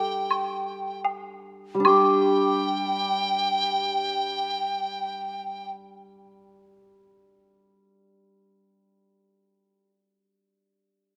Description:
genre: chinese traditional, Chinese chamber ensemble.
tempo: 72-88 BPM.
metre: 4/4.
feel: rubato.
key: unclear.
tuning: A4 = 441 Hz.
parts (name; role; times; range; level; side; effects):
mellow hollow large dizi; melody; 0.0-5.7 s; G5; -29 LUFS; equal; none.
hammered dulcimer; accompaniment; 0.0-9.8 s; G3 to D5; -27 LUFS; equal; none.
woodblock; percussion; 0.3-2.2 s; none; -29 LUFS; equal; none.
room: moderate scoring stage reverb, RT60 2.0 s.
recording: none.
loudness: -25 LUFS.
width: mono.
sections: 0.0-1.9 A section; 1.9-5.0 B section.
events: slowing down 0.0-1.9.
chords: none.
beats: 0.30 1.05 | 1.86 2.67 3.45 4.24.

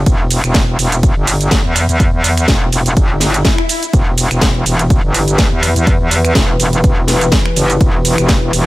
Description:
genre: bass house.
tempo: 124 BPM.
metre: 4/4.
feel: swing 55% on 16ths.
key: E minor.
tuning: A4 = 440 Hz.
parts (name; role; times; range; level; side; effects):
metallic wobble bass; bass; 0.0-8.7 s; E1 to E2; -14 LUFS; equal; chorus, tube saturation, sidechain pumping.
electronic kick drum; drums; 0.1-8.4 s; none; -13 LUFS; equal; none.
garage drum kit; drums; 0.1-8.6 s; finger snaps, hi-hat, ride cymbal, shaker, snare drum; -17 LUFS; right 1 dB; none.
swell; sound effects; 3.1-3.9 s; none; -22 LUFS; left 5 dB; none.
sweeping resonant pad; sustained chords; 3.9-8.7 s; E3 to B4; -19 LUFS; left 1 dB; chorus, sidechain pumping.
room: digital ambience.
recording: none.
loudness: -10 LUFS.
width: side -18 dB against mid.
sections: 0.0-8.7 A section.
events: swell 3.1-3.9.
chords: 0.0 Em.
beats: | 0.06 0.55 1.03 1.51 | 2.00 2.48 2.97 3.45 | 3.94 4.42 4.90 5.39 | 5.87 6.35 6.84 7.32 | 7.81 8.29.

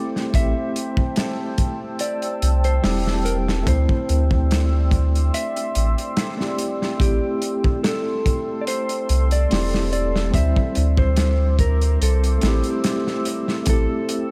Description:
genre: trip hop.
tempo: 72 BPM.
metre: 4/4.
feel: swing 53% on 16ths.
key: A minor.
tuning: A4 = 441 Hz.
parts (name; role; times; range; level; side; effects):
mellow electric guitar; melody; 0.0-14.3 s; G4 to E5; -30 LUFS; equal; tape echo.
tine electric piano; accompaniment; 0.0-14.3 s; G3 to C5; -29 LUFS; equal; tremolo, tape echo.
deep dark ambient pad; sustained chords; 0.0-14.3 s; A4 to E6; -33 LUFS; equal; chorus, built-in reverb, vintage 12-bit sampler grit.
crunchy breakbeat drum kit; drums; 0.2-14.3 s; hi-hat, kick drum, snare drum; -26 LUFS; equal; none.
soft dub sub bass; bass; 0.3-13.9 s; E1 to D2; -21 LUFS; equal; tube saturation.
room: light reverb, small room ambience.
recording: none.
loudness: -21 LUFS.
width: mono.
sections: 0.0-14.3 A section.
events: none.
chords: 0.3 Am7; 3.7 D9sus4; 7.0 Am7; 10.3 D9sus4; 13.7 Am7.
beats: | 0.34 1.17 2.00 2.84 | 3.67 4.50 5.34 6.17 | 7.00 7.84 8.67 9.51 | 10.34 11.17 12.01 12.84 | 13.67.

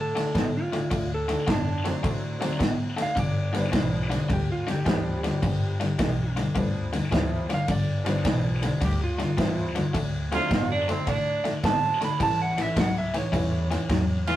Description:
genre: electric blues shuffle.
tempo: 106 BPM.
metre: 4/4.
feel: swing 67% on 8ths.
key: unclear.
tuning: A4 = 440 Hz.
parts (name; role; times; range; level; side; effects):
electric slide guitar; melody; 0.0-14.2 s; D4 to B5; -30 LUFS; right 2 dB; none.
biting overdriven guitar; riff; 0.0-14.4 s; G2 to B3; -28 LUFS; left 2 dB; none.
upright bass; bass; 0.0-14.3 s; G1 to A2; -31 LUFS; equal; none.
natural country drum kit; drums; 0.2-14.4 s; kick drum, ride cymbal, snare drum; -28 LUFS; equal; none.
honky-tonk upright piano; accompaniment; 1.8-13.7 s; F3 to E4; -34 LUFS; equal; none.
clear tenor saxophone; second line; 10.3-14.4 s; C4 to F4; -26 LUFS; right 3 dB; none.
room: moderate studio reverb, RT60 0.5 s.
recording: rough rehearsal-room recording, tube saturation.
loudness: -23 LUFS.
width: side -13 dB against mid.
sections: 0.0-14.4 A section.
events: none.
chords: 0.0 D7; 3.2 G7; 9.9 D7; 12.2 A7.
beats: 0.35 | 0.92 1.48 2.04 2.61 | 3.17 3.73 4.30 4.86 | 5.43 5.99 6.56 7.12 | 7.68 8.25 8.81 9.38 | 9.94 10.51 11.07 11.64 | 12.20 12.77 13.33 13.90.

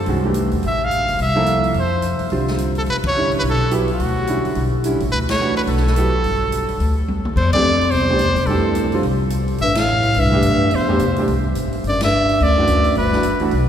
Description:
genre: modal jazz.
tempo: 214 BPM.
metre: 4/4.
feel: swing 61% on 8ths.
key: F major.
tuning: A4 = 440 Hz.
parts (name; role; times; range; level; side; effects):
brilliant trumpet; melody; 0.0-13.5 s; F#4 to F5; -20 LUFS; equal; none.
upright bass; bass; 0.0-13.7 s; Gb1 to C3; -21 LUFS; left 1 dB; none.
clear grand piano; accompaniment; 0.1-13.5 s; D3 to A4; -22 LUFS; right 2 dB; none.
swinging big-band drum kit; drums; 0.1-13.6 s; crash cymbal, hi-hat, kick drum, ride cymbal, snare drum, toms; -31 LUFS; equal; none.
breathy bass clarinet; second line; 7.4-13.5 s; C2 to A2; -21 LUFS; left 2 dB; none.
room: wet cathedral reverb, RT60 4.6 s.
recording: recorded in a church or concert hall.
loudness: -15 LUFS.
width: side -9 dB against mid.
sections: 0.0-13.7 A section.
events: band accent 3.0, 5.3, 7.5, 9.7, 12.0; drum fill 7.1.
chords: 0.0 Fmaj9; 2.9 Gmaj9; 7.4 Fmaj9; 11.8 Gmaj9.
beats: 0.08 0.36 | 0.64 0.92 1.20 1.48 | 1.76 2.04 2.32 2.60 | 2.88 3.16 3.44 3.72 | 4.00 4.28 4.56 4.84 | 5.12 5.40 5.68 5.96 | 6.24 6.52 6.80 7.08 | 7.36 7.64 7.92 8.20 | 8.48 8.76 9.04 9.32 | 9.60 9.88 10.16 10.44 | 10.72 11.00 11.28 11.56 | 11.84 12.12 12.40 12.68 | 12.96 13.24 13.52.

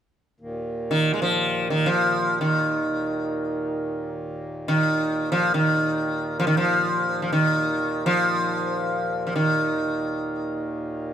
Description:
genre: indian classical.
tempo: free time.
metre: none.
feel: none.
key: unclear.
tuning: A4 = 439 Hz.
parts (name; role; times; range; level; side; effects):
pedal harmonium; drone; 0.4-11.1 s; Eb2 to Bb2; -31 LUFS; right 1 dB; none.
sitar; melody; 0.9-11.1 s; Eb3 to Ab3; -22 LUFS; equal; none.
room: light reverb.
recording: close, detailed microphones.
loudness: -21 LUFS.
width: side -9 dB against mid.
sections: 0.4-11.1 A section.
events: none.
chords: none.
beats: free time.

